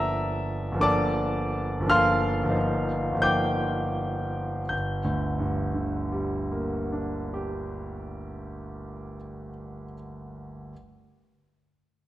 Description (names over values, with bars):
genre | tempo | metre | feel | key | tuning
classical, impressionist solo piano | 37-60 BPM | 3/4 | rubato | G minor | A4 = 437 Hz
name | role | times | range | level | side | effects
clear concert grand piano | solo | 0.0-10.7 s | G1 to G6 | -26 LUFS | equal | none
room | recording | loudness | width
moderate concert hall reverb, RT60 1.7 s | dark, warm production | -24 LUFS | side -14 dB against mid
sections
0.0-4.7 A section; 4.7-8.5 B section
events
slowing down 0.0-4.7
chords
0.0 Bbmaj7/G; 0.8 Gm9; 2.5 Eb69/G; 4.7 Gm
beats
| 0.83 1.91 3.24 | 4.71 5.96 7.21